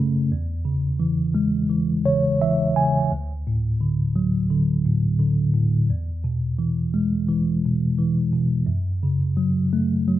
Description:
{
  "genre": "folk",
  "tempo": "86 BPM",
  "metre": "4/4",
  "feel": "straight",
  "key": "unclear",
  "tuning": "A4 = 438 Hz",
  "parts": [
    { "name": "mellow tine electric piano", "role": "solo", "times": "0.0-10.2 s", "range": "D2 to G#5", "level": "-19 LUFS", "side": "equal", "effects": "medium stereo tremolo" }
  ],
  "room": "light reverb",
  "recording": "recorded outdoors, with no room sound",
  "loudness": "-19 LUFS",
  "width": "side -13 dB against mid",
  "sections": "0.0-10.2 A section",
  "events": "none",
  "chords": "0.3 C#m/E; 3.1 D; 5.9 E; 8.7 F#m"
}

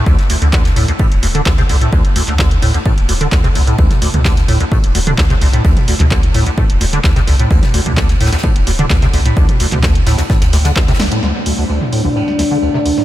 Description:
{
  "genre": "acid house",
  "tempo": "129 BPM",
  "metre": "4/4",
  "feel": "straight",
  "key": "unclear",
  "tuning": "A4 = 441 Hz",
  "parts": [
    { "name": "liquid acid bass", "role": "riff", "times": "0.0-13.0 s", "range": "D2 to D3", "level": "-16 LUFS", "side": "equal", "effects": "tube saturation, ensemble chorus, ping-pong delay" },
    { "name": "warm sub bass", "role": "bass", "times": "0.1-11.1 s", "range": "D1 to D2", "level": "-15 LUFS", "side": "equal", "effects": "sidechain pumping" },
    { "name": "electronic kick drum", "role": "drums", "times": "0.1-10.9 s", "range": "none", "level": "-13 LUFS", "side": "equal", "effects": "none" },
    { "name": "soft brush drum kit", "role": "drums", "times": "0.1-13.0 s", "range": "ride cymbal, snare drum", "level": "-28 LUFS", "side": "right 2 dB", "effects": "sidechain pumping on cymbals, high-pass filter on cymbals, low-pass filter on cymbals, high-pass filter on snare, low-pass filter on snare, high-pass filter on room, low-pass filter on room" },
    { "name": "punchy analog drum machine", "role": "drums", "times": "0.2-13.0 s", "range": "handclaps, hi-hat, snare drum, toms", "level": "-20 LUFS", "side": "right 1 dB", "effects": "none" },
    { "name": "dark analog pad", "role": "sustained chords", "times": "11.2-13.0 s", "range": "D4 to D5", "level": "-16 LUFS", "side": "left 1 dB", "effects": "chorus, sidechain pumping" }
  ],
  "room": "light reverb",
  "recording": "none",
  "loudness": "-10 LUFS",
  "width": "side -14 dB against mid",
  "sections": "0.0-11.2 A section; 11.2-13.0 B section",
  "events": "drum fill 11.0; band accent 11.0",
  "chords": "0.0 D5"
}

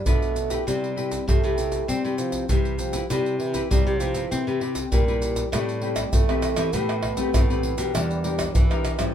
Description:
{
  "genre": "samba and choro",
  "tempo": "99 BPM",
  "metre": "4/4",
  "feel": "straight",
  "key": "C major, A minor from 5.5 s",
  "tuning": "A4 = 440 Hz",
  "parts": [
    { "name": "growling trombone", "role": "second line", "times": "0.0-9.1 s", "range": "E3 to B3", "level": "-29 LUFS", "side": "right 6 dB", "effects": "none" },
    { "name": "nylon-string guitar", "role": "accompaniment", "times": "0.0-9.1 s", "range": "D3 to B4", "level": "-28 LUFS", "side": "left 6 dB", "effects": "none" },
    { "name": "nylon-string guitar", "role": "bass", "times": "0.1-9.1 s", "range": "E2 to C4", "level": "-28 LUFS", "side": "equal", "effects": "none" },
    { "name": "maracas, surdo, pandeiro and tamborim", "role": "percussion", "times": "0.1-9.1 s", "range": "none", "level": "-24 LUFS", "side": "equal", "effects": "none" }
  ],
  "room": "light reverb",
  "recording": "minimal, uncompressed stereo recording",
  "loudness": "-21 LUFS",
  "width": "side -9 dB against mid",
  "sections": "0.0-5.5 A section; 5.5-9.1 B section",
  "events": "none",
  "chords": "0.0 G7; 0.7 Cmaj7; 5.5 Am9; 7.9 Em7b5"
}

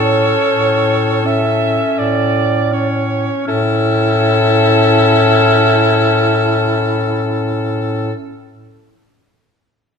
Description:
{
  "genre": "classical, lyrical piece for single-reed quartet",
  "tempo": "41 BPM",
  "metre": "4/4",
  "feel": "rubato",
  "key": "A major",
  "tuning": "A4 = 441 Hz",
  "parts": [
    { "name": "clear soprano saxophone", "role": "melody", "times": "0.0-8.1 s", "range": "A4", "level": "-16 LUFS", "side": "left 8 dB", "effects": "none" },
    { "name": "bright alto saxophone", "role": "second line", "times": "0.0-8.1 s", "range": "E4 to E5", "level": "-18 LUFS", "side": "right 6 dB", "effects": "none" },
    { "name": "clear clarinet", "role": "accompaniment", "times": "0.0-8.1 s", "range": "C#4", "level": "-20 LUFS", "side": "left 3 dB", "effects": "none" },
    { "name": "warm bass clarinet", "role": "bass", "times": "0.0-8.1 s", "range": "A2", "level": "-17 LUFS", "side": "right 1 dB", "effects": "none" }
  ],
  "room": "moderate recital hall reverb, RT60 1.6 s",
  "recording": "none",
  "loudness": "-12 LUFS",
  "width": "side -6 dB against mid",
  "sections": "0.0-3.5 A section; 3.5-9.3 B section",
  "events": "slowing down 0.0-3.5",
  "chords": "0.0 A"
}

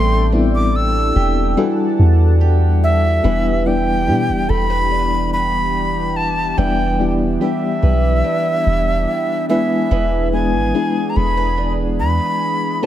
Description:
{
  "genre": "contemporary R&B",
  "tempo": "72 BPM",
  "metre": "4/4",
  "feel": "straight",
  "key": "E minor",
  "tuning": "A4 = 440 Hz",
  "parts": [
    { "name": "breathy bright jazz flute", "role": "melody", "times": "0.0-12.9 s", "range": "E5 to E6", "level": "-20 LUFS", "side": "equal", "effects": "digital delay" },
    { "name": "FM electric piano with tremolo", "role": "accompaniment", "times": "0.0-12.9 s", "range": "G3 to D5", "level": "-21 LUFS", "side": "left 4 dB", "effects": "none" },
    { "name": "chorused pulse-width pad", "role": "sustained chords", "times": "0.0-12.9 s", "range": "E3 to A5", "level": "-25 LUFS", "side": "right 1 dB", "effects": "none" },
    { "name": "picked old ladder-braced acoustic guitar", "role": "arpeggios", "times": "0.0-12.9 s", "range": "E3 to B4", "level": "-25 LUFS", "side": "right 7 dB", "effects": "none" },
    { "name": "soft 808-style bass", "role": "bass", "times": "0.0-12.2 s", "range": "E1 to B2", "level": "-17 LUFS", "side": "equal", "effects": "none" }
  ],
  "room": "studio ambience",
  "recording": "none",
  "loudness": "-14 LUFS",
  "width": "side -12 dB against mid",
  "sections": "0.0-3.2 A section; 3.2-12.9 B section",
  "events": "none",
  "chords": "0.0 Am11; 1.6 Em11; 3.2 Em7; 9.5 E7"
}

